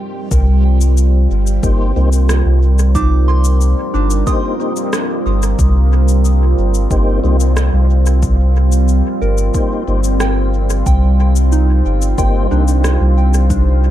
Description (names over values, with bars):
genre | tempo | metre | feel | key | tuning
ambient dub | 91 BPM | 4/4 | straight | C minor | A4 = 440 Hz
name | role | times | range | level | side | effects
deep dark ambient pad | sustained chords | 0.0-13.9 s | G3 to C5 | -20 LUFS | right 1 dB | chorus, built-in reverb
soft synth bell | arpeggios | 0.0-13.9 s | D4 to Eb6 | -25 LUFS | right 3 dB | chorus, tape echo
soft dub sub bass | bass | 0.3-13.9 s | G1 to C2 | -12 LUFS | equal | none
electronic cabasa and rim click | drums | 0.3-13.6 s | none | -25 LUFS | left 1 dB | overdrive, dub echo
electronic kick drum | drums | 0.3-13.6 s | none | -17 LUFS | equal | overdrive
mellow tonewheel organ | stabs | 1.6-12.6 s | Bb3 to C5 | -25 LUFS | left 4 dB | chorus vibrato, slow rotary speaker, dub echo
room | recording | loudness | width
little or no reverb | echo-heavy mix | -11 LUFS | side -12 dB against mid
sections
0.3-13.9 A section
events
none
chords
0.3 Cm7